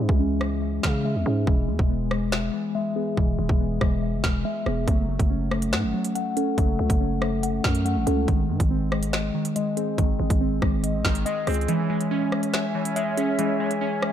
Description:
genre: hip hop, drill.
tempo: 141 BPM.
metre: 4/4.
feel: half-time.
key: C# minor.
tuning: A4 = 440 Hz.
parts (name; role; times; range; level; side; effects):
glassy digital keys; accompaniment; 0.0-14.1 s; D#3 to F#5; -29 LUFS; right 6 dB; chorus, low-pass filter.
mellow tine electric piano; arpeggios; 0.0-14.1 s; G#3 to F#5; -27 LUFS; left 6 dB; medium stereo tremolo, low-pass filter, ping-pong delay.
growling 808-style bass; bass; 0.0-11.7 s; E1 to C#3; -26 LUFS; equal; none.
drill drum kit; drums; 0.1-14.1 s; finger snaps, hi-hat, kick drum, rim click, snare drum; -25 LUFS; equal; overdrive.
flute section; sustained chords; 11.7-14.1 s; C#4 to G#5; -29 LUFS; equal; none.
room: light reverb.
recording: dark, warm production.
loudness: -22 LUFS.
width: side -10 dB against mid.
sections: 0.0-14.1 A section.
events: break 0.0-4.9; filter sweep 0.0-11.7; kick muted 11.7-14.1.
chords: 0.0 C#m; 1.5 E; 4.9 F#m; 8.3 G#; 11.7 C#m.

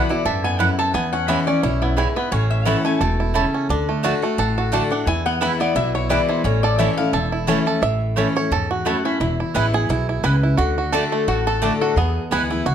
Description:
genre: bluegrass.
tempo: 174 BPM.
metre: 4/4.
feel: swing 55% on 8ths.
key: A major.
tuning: A4 = 440 Hz.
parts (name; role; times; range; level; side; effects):
bluegrass banjo; melody; 0.0-12.7 s; A3 to E5; -23 LUFS; right 6 dB; none.
lap resonator guitar; second line; 0.0-12.2 s; E4 to A5; -24 LUFS; left 6 dB; none.
picked steel-string acoustic guitar; accompaniment; 0.0-12.7 s; E2 to F#4; -23 LUFS; left 4 dB; none.
upright bass; bass; 0.3-12.7 s; E1 to F#2; -22 LUFS; equal; none.
mandolin; stabs; 0.6-12.4 s; A3 to A5; -25 LUFS; right 6 dB; none.
room: moderate large studio reverb, RT60 1.1 s.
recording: none.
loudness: -17 LUFS.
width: side -9 dB against mid.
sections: 0.0-7.8 A section; 7.8-12.7 A section.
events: resonator guitar played with a steel bar solo 0.0-7.8; five-string banjo solo 7.8-12.7.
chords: 0.0 Bsus4; 0.9 E6; 2.3 A; 3.7 D; 5.1 E; 6.4 A; 9.2 E; 10.6 D; 12.0 E.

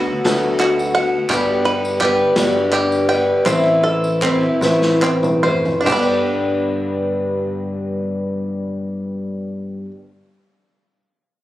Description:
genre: indie folk with a building arrangement.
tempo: 46-57 BPM (dotted quarters).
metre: 6/8.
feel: straight.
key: G major.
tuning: A4 = 438 Hz.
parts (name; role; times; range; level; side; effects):
picked twelve-string acoustic guitar; accompaniment; 0.0-10.1 s; G2 to B4; -18 LUFS; left 2 dB; none.
bluegrass banjo; arpeggios; 0.0-9.9 s; C4 to G5; -21 LUFS; right 3 dB; none.
picked electric bass; bass; 0.0-9.9 s; G1 to D2; -25 LUFS; equal; none.
unplugged drum kit; drums; 0.2-6.1 s; crash cymbal, kick drum, ride cymbal, snare drum, toms; -26 LUFS; right 1 dB; none.
group handclap; percussion; 0.3-6.3 s; none; -28 LUFS; left 1 dB; none.
tambourine; percussion; 0.3-6.3 s; none; -37 LUFS; equal; none.
room: light reverb, small room ambience.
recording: recorded on a phone in the room, club reverb, compression.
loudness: -15 LUFS.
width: side -14 dB against mid.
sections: 0.0-5.9 A section; 5.9-11.1 B section.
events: slowing down 1.3-5.9; drum fill 4.6-5.9.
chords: 0.0 D6; 1.3 G; 3.5 Amadd9; 5.9 G.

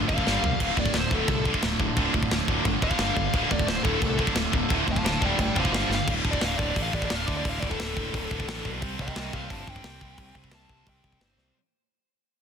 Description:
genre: heavy metal.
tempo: 175 BPM.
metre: 4/4.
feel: straight.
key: D minor.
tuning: A4 = 440 Hz.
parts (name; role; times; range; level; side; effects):
pipe organ, strings celeste; sustained chords; 0.0-6.1 s; D3 to D5; -40 LUFS; right 1 dB; none.
heavy high-gain guitar; riff; 0.0-11.6 s; D2 to C4; -32 LUFS; left 15 dB; distortion.
high-gain distorted guitar; riff; 0.0-11.5 s; D2 to C4; -31 LUFS; right 14 dB; distortion.
high-gain distorted guitar; riff; 0.0-6.1 s; D2 to G3; -31 LUFS; right 1 dB; distortion.
high-gain lead guitar; melody; 0.1-11.5 s; A4 to A5; -32 LUFS; left 2 dB; distortion.
growling picked electric bass; bass; 0.1-11.5 s; D1 to D2; -32 LUFS; equal; overdrive.
tight metal drum kit; drums; 0.1-11.5 s; china cymbal, crash cymbal, hi-hat, kick drum, snare drum, toms; -28 LUFS; equal; none.
room: small room ambience.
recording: dense, heavily limited modern master.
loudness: -23 LUFS.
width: side -7 dB against mid.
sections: 0.0-6.1 A section; 6.1-11.6 B section.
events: lead electric guitar solo 0.0-6.1, 6.1-11.6; drum fill 0.3-0.6, 5.9, 11.4; fade-out 6.1-11.6.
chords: 0.3 G5; 0.6 Dm; 3.0 G5; 3.3 Dm; 5.7 G5; 6.1 D5; 8.8 C5.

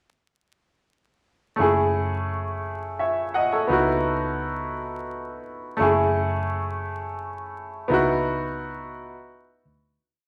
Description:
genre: slow six-eight R&B.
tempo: 57 BPM (dotted quarters).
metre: 6/8.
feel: straight.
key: F# dorian.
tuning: A4 = 440 Hz.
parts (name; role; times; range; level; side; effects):
clear grand piano; accompaniment; 1.6-10.0 s; A3 to F#5; -26 LUFS; equal; none.
vintage muted fingered electric bass; bass; 1.6-10.0 s; F#1 to D2; -33 LUFS; equal; none.
room: wet large studio reverb, RT60 1.3 s.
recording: vinyl crackle.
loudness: -25 LUFS.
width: mono.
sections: 1.6-10.0 verse.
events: fade-out 7.9-10.0.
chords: 1.6 F#m9; 3.7 C#m11; 5.8 F#m9; 7.9 C#m11.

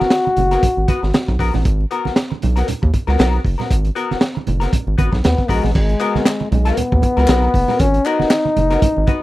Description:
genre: funk.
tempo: 117 BPM.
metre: 4/4.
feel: swing 56% on 16ths.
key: G# minor.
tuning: A4 = 440 Hz.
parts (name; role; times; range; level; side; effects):
mellow trombone; melody; 0.0-1.4, 5.2-9.2 s; G#3 to F#4; -18 LUFS; left 2 dB; none.
archtop guitar, miked and amplified; accompaniment; 0.0-9.2 s; B3 to B4; -23 LUFS; left 4 dB; wah.
round analog bass; bass; 0.0-9.1 s; F#1 to D#2; -17 LUFS; equal; none.
crunchy breakbeat drum kit; drums; 0.0-9.2 s; crash cymbal, hi-hat, kick drum, snare drum; -18 LUFS; equal; none.
congas; percussion; 0.0-9.2 s; none; -25 LUFS; right 6 dB; none.
group handclap; percussion; 6.0-8.4 s; none; -30 LUFS; left 5 dB; none.
room: small room ambience.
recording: dry, close 1970s-style studio recording.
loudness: -14 LUFS.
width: side -17 dB against mid.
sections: 0.0-5.7 A section; 5.7-9.2 B section.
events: none.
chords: 0.0 G#m9.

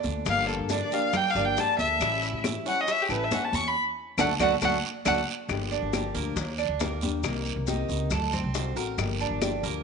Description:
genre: latin, Cuban son and guajira.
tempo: 138 BPM.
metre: 4/4.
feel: straight.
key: G minor.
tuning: A4 = 440 Hz.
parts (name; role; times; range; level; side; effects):
nylon-string guitar; accompaniment; 0.0-9.8 s; C3 to G4; -34 LUFS; left 10 dB; none.
Cuban tres; arpeggios; 0.0-9.8 s; A3 to Bb4; -31 LUFS; right 12 dB; none.
upright bass; bass; 0.0-9.8 s; G1 to A2; -32 LUFS; right 1 dB; none.
congas; percussion; 0.0-9.8 s; none; -35 LUFS; equal; none.
guiro; percussion; 0.0-9.8 s; none; -39 LUFS; right 12 dB; none.
maracas; percussion; 0.0-9.8 s; none; -40 LUFS; left 12 dB; none.
warm violin; melody; 0.3-5.2 s; G4 to C#6; -26 LUFS; left 2 dB; none.
bongos; percussion; 0.3-9.6 s; none; -36 LUFS; left 11 dB; none.
claves; percussion; 0.3-9.6 s; none; -36 LUFS; left 10 dB; none.
room: moderate echo chamber reverb, RT60 1.7 s, studio ambience.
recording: 1960s-style stereo with parts hard left and right, nothing above 10.3 kHz.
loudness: -24 LUFS.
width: side -5 dB against mid.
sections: 0.0-5.5 A section; 5.5-9.8 B section.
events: violin solo 0.0-5.5; band accent 3.8-5.5; drum fill 4.6-5.5.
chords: 0.3 Gm7; 2.0 A7; 3.8 D; 5.5 Gm7; 6.4 Ebmaj7; 7.2 Cm7; 8.1 D7; 9.0 Gm7.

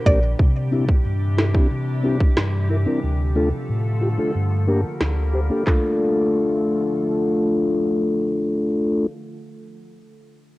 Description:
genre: dancehall.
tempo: 91 BPM.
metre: 4/4.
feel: straight.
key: D minor.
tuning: A4 = 438 Hz.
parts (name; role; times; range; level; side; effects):
glassy FM pad; sustained chords; 0.0-9.1 s; C3 to A4; -30 LUFS; right 1 dB; ensemble chorus, built-in reverb, sidechain pumping, low-pass filter, cassette tape.
mellow tonewheel organ; accompaniment; 0.1-9.1 s; D2 to C5; -20 LUFS; left 1 dB; slow rotary speaker, sidechain pumping, low-pass filter, cassette tape.
island pop drum kit; drums; 0.1-5.8 s; handclaps, hi-hat, kick drum, rim click, snare drum; -18 LUFS; equal; cassette tape.
room: light reverb, digital ambience.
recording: home recording on cassette.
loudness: -18 LUFS.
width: side -18 dB against mid.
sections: 0.4-5.7 A section; 5.7-8.3 B section.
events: none.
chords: 0.4 Cadd9; 3.0 Dm; 4.3 Gm; 5.7 Dm.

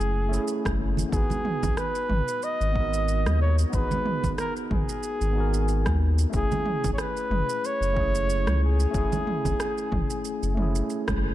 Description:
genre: sunset chillout.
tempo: 92 BPM.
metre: 4/4.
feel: swing 56% on 16ths.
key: G# phrygian.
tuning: A4 = 440 Hz.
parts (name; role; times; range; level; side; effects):
breathy flugelhorn; melody; 0.0-10.9 s; G#4 to D#5; -29 LUFS; equal; digital delay.
overdriven tine electric piano; accompaniment; 0.0-11.3 s; A3 to G#5; -32 LUFS; moving between left 4 dB and right 5 dB; auto-pan, digital delay.
round analog bass; bass; 0.0-11.3 s; F#1 to D#2; -24 LUFS; equal; none.
deep house drum kit; drums; 0.0-11.2 s; rim click, shaker, toms; -33 LUFS; right 1 dB; overdrive.
electronic kick drum; drums; 0.7-11.2 s; none; -31 LUFS; equal; overdrive.
congas; percussion; 0.7-11.2 s; none; -33 LUFS; right 3 dB; none.
room: light reverb, digital ambience.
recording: dark, warm production.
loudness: -23 LUFS.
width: side -14 dB against mid.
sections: 0.0-11.3 A section.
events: band accent 11.1.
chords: 0.0 F#m9; 1.1 G#m9; 6.3 F#m9.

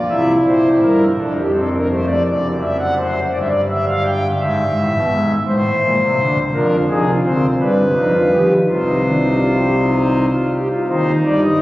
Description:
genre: classical, baroque-style 3-part fugue for pipe organ.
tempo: 56 BPM (dotted quarters).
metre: 6/8.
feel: straight.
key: C minor from 6.5 s.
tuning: A4 = 440 Hz.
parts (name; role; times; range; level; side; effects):
pipe organ, foundations; solo; 0.1-11.6 s; F1 to G5; -14 LUFS; equal; none.
room: wet cathedral reverb, RT60 4.7 s.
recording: recorded on a phone in the room, club reverb, compression.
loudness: -14 LUFS.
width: side -17 dB against mid.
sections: 0.0-2.3 A section; 2.3-10.9 B section.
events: none.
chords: 0.1 C7; 1.2 F; 2.3 D7/F#; 3.3 G5; 4.4 E/G#; 5.5 Am; 6.5 Dm7b5; 7.6 G7; 8.7 Cm; 10.9 Cm/Eb.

